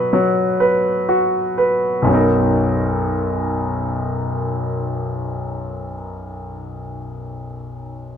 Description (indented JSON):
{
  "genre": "pop",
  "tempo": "60 BPM",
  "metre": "4/4",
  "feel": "straight",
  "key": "B major",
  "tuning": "A4 = 440 Hz",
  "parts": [
    { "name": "clear concert grand piano", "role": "accompaniment", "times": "0.0-8.2 s", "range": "B1 to B4", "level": "-18 LUFS", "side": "equal", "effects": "none" }
  ],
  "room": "moderate studio reverb, RT60 0.5 s",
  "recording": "none",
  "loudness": "-17 LUFS",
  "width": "side -8 dB against mid",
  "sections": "0.0-2.1 A section; 2.1-6.1 B section",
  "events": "slowing down 0.0-2.1",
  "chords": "0.0 B5; 2.1 Bmaj7"
}